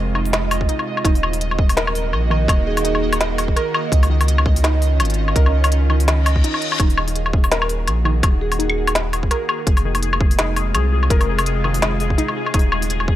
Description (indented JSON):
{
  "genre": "half-time drum and bass",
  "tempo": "167 BPM",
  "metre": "4/4",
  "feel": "swing 56% on 16ths, half-time",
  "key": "Eb dorian",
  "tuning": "A4 = 440 Hz",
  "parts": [
    { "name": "bowed-like drone", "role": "sustained chords", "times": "0.0-13.2 s", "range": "C3 to Gb4", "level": "-27 LUFS", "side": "right 2 dB", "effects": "built-in reverb, sidechain pumping" },
    { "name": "warbly dusty pluck", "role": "arpeggios", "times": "0.0-13.2 s", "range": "Eb3 to Bb4", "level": "-28 LUFS", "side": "equal", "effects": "chorus, tape echo" },
    { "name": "saturated sub bass", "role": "bass", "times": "0.0-13.2 s", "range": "Eb1 to Db2", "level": "-19 LUFS", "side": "equal", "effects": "none" },
    { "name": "pulsing gated texture", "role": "texture", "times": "0.0-13.2 s", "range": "Ab4 to Eb5", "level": "-28 LUFS", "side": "right 2 dB", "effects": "chorus, built-in reverb" },
    { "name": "organic electronic drum kit", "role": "drums", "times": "0.2-13.1 s", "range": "hi-hat, snare drum, woodblock", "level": "-21 LUFS", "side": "left 2 dB", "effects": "none" },
    { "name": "electronic kick drum", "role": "drums", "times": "0.6-13.2 s", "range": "none", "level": "-17 LUFS", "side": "equal", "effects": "none" },
    { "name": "vibraphone with soft mallets", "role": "melody", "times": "2.7-3.2, 8.4-8.9 s", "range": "Ab4", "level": "-28 LUFS", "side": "right 2 dB", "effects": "analog delay" },
    { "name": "reverse cymbal", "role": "sound effects", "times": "6.2-6.8 s", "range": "none", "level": "-26 LUFS", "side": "left 5 dB", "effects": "none" }
  ],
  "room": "light reverb",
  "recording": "dry, gritty hardware recording",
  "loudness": "-16 LUFS",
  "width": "side -13 dB against mid",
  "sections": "0.0-13.2 A section",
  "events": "reverse cymbal 6.2-6.8; break 6.4-6.8",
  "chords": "0.0 Fm; 1.0 Ebm; 3.9 Dbadd9; 6.8 Ebm; 9.7 Fm; 12.5 Ebm"
}